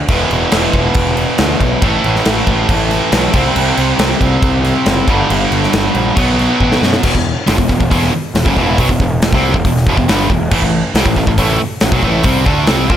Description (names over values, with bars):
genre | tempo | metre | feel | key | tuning
hard rock | 138 BPM | 4/4 | straight | E minor | A4 = 439 Hz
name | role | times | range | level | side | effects
distorted electric guitar | riff | 0.1-13.0 s | E2 to D4 | -14 LUFS | right 1 dB | overdrive
fuzz picked electric bass | bass | 0.1-13.0 s | E1 to F#2 | -17 LUFS | equal | overdrive
big rock drum kit | drums | 0.1-13.0 s | crash cymbal, hi-hat, kick drum, snare drum | -15 LUFS | equal | none
room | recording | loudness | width
light reverb, small room ambience | none | -11 LUFS | side -10 dB against mid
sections
0.0-7.0 A section; 7.0-13.0 B section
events
drum fill 6.6-7.0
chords
0.1 E5; 1.8 A5; 3.3 C5; 5.1 G5; 6.2 B5; 7.0 Em; 10.5 A5